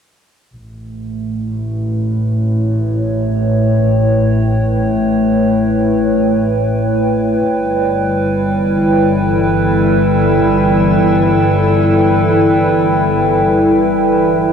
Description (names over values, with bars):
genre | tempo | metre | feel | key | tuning
ambient | free time | none | none | unclear | A4 = 440 Hz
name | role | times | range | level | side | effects
warm chamber double bass section | bass | 0.5-14.4 s | G1 to A1 | -18 LUFS | equal | tube saturation
warbly tape-like pad | sustained chords | 1.0-14.5 s | G3 to G5 | -13 LUFS | equal | chorus, built-in reverb
organ-like drone | drone | 8.7-14.5 s | E3 to E4 | -19 LUFS | right 2 dB | ensemble chorus, built-in reverb
room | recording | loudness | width
wet concert hall reverb, RT60 2.2 s | dark, warm production | -11 LUFS | side -7 dB against mid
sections
0.5-14.4 A section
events
none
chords
0.5 A7; 7.5 G6